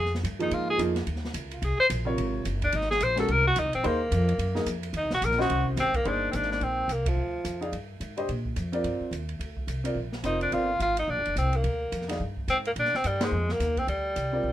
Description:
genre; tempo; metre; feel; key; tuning
modal jazz; 215 BPM; 4/4; swing 60% on 8ths; G phrygian from 6.1 s; A4 = 440 Hz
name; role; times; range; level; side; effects
clear tenor saxophone; melody; 0.0-7.6, 10.3-14.5 s; F3 to C5; -26 LUFS; equal; none
upright bass; bass; 0.0-14.5 s; F1 to Bb2; -30 LUFS; equal; none
open jazz drum kit; drums; 0.1-14.2 s; hi-hat, kick drum, ride cymbal, snare drum; -37 LUFS; right 1 dB; none
warm upright piano; accompaniment; 0.4-14.5 s; C3 to F5; -30 LUFS; right 1 dB; none
room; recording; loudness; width
light reverb; minimal, uncompressed stereo recording; -25 LUFS; side -12 dB against mid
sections
0.0-6.1 A section; 6.1-14.5 B section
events
tenor saxophone solo 0.0-6.1; band accent 7.0, 13.2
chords
0.0 Fm7; 1.6 Abadd9; 6.1 Gm7

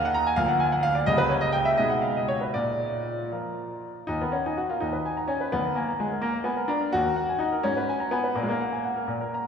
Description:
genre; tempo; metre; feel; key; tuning
classical-period piano sonatina; 78-88 BPM (dotted quarters); 6/8; rubato; unclear; A4 = 440 Hz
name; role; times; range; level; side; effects
clear concert grand piano; solo; 0.0-9.5 s; Db2 to Bb5; -24 LUFS; equal; none
room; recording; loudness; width
wet church reverb, RT60 3.5 s; recorded in a church or concert hall; -24 LUFS; side -7 dB against mid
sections
0.0-4.1 A section; 4.1-9.5 A section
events
none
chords
0.4 Bb/D; 1.1 Dbdim7; 1.8 Abm/Cb; 2.6 Bb; 4.1 Ebm; 4.8 Abm/Eb; 5.5 Bb7/D; 6.9 Ebm; 7.6 Abmadd11; 8.4 Gbadd9/Bb

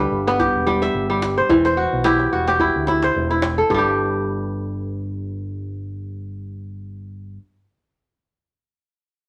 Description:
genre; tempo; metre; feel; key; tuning
west african traditional, West African string and xylophone music; 109 BPM; 4/4; swing 56% on 16ths; G major; A4 = 440 Hz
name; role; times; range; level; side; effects
kora; arpeggios; 0.0-7.5 s; G2 to E5; -21 LUFS; equal; none
fingered electric bass with an envelope filter; bass; 0.0-7.4 s; E1 to D2; -30 LUFS; equal; none
djembe; percussion; 0.0-4.0 s; none; -29 LUFS; equal; none
room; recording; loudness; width
moderate studio reverb, RT60 0.7 s; none; -20 LUFS; mono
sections
0.0-3.7 A section; 3.7-5.9 B section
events
none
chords
0.0 G; 1.5 Em; 3.7 Gsus2

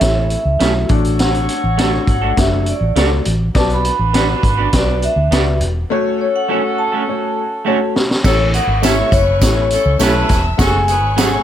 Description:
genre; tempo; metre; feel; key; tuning
uptempo 1960s-style soul; 102 BPM; 4/4; straight; A major; A4 = 440 Hz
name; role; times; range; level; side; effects
vibraphone with medium hard mallets; melody; 0.0-11.4 s; C#5 to B5; -19 LUFS; equal; none
clear saxophone section; second line; 0.0-11.4 s; C#4 to C#5; -25 LUFS; right 1 dB; none
warm upright piano; accompaniment; 0.0-11.4 s; A3 to F#5; -21 LUFS; left 4 dB; none
vintage muted fingered electric bass; bass; 0.0-11.4 s; E1 to D2; -18 LUFS; equal; none
vintage drum kit; drums; 0.0-11.3 s; crash cymbal, hi-hat, kick drum, snare drum; -17 LUFS; equal; none
electric guitar through a small old amp; stabs; 0.6-11.3 s; F#3 to B4; -22 LUFS; right 6 dB; none
clear studio string section; second line; 8.2-11.4 s; C#5 to E6; -27 LUFS; equal; none
tambourine; percussion; 8.2-11.3 s; none; -28 LUFS; right 8 dB; none
room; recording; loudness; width
little or no reverb; none; -13 LUFS; side -10 dB against mid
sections
0.0-8.2 A section; 8.2-11.4 B section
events
drum fill 7.7-8.2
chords
0.0 A; 0.9 D; 3.6 Bm; 5.9 F#m; 8.2 A; 10.6 F#madd9

